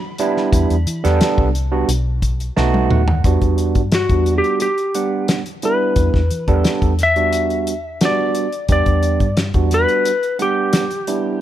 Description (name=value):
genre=straight-eighth soul blues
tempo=88 BPM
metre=4/4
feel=straight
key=E minor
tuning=A4 = 440 Hz
part: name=clean lap steel guitar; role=melody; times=0.0-11.4 s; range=F#4 to B5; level=-19 LUFS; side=left 2 dB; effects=none
part: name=overdriven tine electric piano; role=accompaniment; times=0.2-11.4 s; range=G3 to A5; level=-20 LUFS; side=right 5 dB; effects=none
part: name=warm soul drum kit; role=drums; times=0.2-11.2 s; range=hi-hat, kick drum, snare drum, toms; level=-19 LUFS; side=left 1 dB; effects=none
part: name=vintage muted fingered electric bass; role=bass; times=0.5-9.8 s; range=B1 to E3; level=-18 LUFS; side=equal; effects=none
room=little or no reverb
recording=none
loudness=-15 LUFS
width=side -12 dB against mid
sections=0.0-3.2 A section; 3.2-11.4 B section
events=tine electric piano fill 2.2-3.2; drum fill 2.6-3.2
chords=0.0 Em7; 1.9 B7; 3.2 Em7